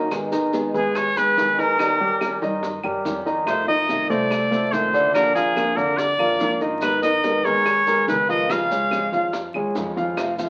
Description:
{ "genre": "latin, Cuban son and guajira", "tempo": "143 BPM", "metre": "4/4", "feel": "straight", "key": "unclear", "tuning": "A4 = 436 Hz", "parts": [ { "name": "fingerpicked old ladder-braced acoustic guitar", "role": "accompaniment", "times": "0.0-10.5 s", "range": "C3 to Bb4", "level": "-30 LUFS", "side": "equal", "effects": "none" }, { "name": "dark grand piano", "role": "arpeggios", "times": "0.0-10.5 s", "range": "D3 to F5", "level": "-26 LUFS", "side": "equal", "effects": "none" }, { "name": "upright bass", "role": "bass", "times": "0.0-10.5 s", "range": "Ab1 to Ab2", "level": "-41 LUFS", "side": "equal", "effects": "none" }, { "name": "bongos", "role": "percussion", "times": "0.1-10.5 s", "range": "none", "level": "-34 LUFS", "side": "equal", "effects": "none" }, { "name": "claves", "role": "percussion", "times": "0.1-10.4 s", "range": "none", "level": "-37 LUFS", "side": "equal", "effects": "none" }, { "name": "maracas", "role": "percussion", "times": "0.1-10.5 s", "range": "none", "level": "-44 LUFS", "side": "equal", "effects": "none" }, { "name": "bright trumpet", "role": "melody", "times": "0.8-9.3 s", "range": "Ab4 to F5", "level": "-23 LUFS", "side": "equal", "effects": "none" } ], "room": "wet club reverb, RT60 0.9 s", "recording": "very old 78 rpm record, vinyl crackle", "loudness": "-21 LUFS", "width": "mono", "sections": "0.1-10.5 A section", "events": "none", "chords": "0.1 Abm; 1.8 Eb7; 3.5 F7; 5.1 Bb; 6.8 Abmadd9; 8.5 Db" }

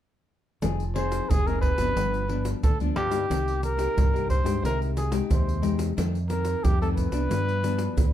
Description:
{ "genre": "samba and choro", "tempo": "90 BPM", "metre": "4/4", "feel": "straight", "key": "F minor", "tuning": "A4 = 441 Hz", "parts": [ { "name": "nylon-string guitar", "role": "accompaniment", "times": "0.6-8.1 s", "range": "F2 to Ab4", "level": "-30 LUFS", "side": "left 7 dB", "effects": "none" }, { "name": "fingered electric bass", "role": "bass", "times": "0.6-8.1 s", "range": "F1 to G2", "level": "-28 LUFS", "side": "right 1 dB", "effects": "none" }, { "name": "tube shaker, surdo and pandeiro", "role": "percussion", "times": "0.6-8.1 s", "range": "none", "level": "-26 LUFS", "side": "right 1 dB", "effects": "none" }, { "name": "breathy trumpet", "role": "melody", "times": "1.0-8.1 s", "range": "G4 to C5", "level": "-29 LUFS", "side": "right 1 dB", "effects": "slapback echo, plate reverb" } ], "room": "light reverb", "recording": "dark, warm production", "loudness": "-23 LUFS", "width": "side -11 dB against mid", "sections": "0.6-8.1 A section", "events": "none", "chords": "0.6 Fm7; 2.0 G7; 3.3 Cm7; 4.6 Abmaj7/C; 6.0 F7; 7.3 G7" }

